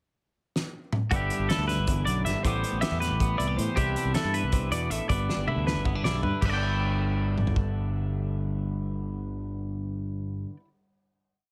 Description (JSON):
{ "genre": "math rock and midwest emo", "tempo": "316 BPM (eighths)", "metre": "7/8", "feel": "straight", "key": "G major", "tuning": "A4 = 441 Hz", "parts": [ { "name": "loose indie drum kit", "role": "drums", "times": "0.6-7.7 s", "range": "crash cymbal, hi-hat, kick drum, snare drum, toms", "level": "-32 LUFS", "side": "equal", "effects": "none" }, { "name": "twelve-string electric guitar", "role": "accompaniment", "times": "1.1-10.7 s", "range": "E2 to G4", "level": "-34 LUFS", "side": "equal", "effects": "none" }, { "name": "twelve-string electric guitar", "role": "arpeggios", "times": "1.1-10.6 s", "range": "G4 to G5", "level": "-34 LUFS", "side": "equal", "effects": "slapback echo" }, { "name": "growling fingered electric bass", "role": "bass", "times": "1.1-10.4 s", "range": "G1 to A2", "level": "-32 LUFS", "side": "equal", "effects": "overdrive" } ], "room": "light reverb", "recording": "none", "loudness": "-28 LUFS", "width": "mono", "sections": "0.0-1.1 pickup bar; 1.1-6.4 A section; 6.4-9.1 final chord", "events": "drum fill 0.5-1.1, 5.3-6.4", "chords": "0.0 N.C.; 1.1 G69; 2.4 Am9; 5.1 G6", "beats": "0.16 0.35 0.54 0.73 0.92 | 1.11 1.30 1.50 1.69 1.88 2.06 2.25 | 2.44 2.63 2.83 3.02 3.20 3.39 3.58 | 3.77 3.96 4.15 4.34 4.53 4.72 4.91 | 5.10 5.29 5.48 5.67 5.86 6.04 6.23 | 6.42 6.61 6.80 6.99 7.18 7.37 7.56 | 7.75 7.94 8.13 8.32 8.51 8.70 8.89" }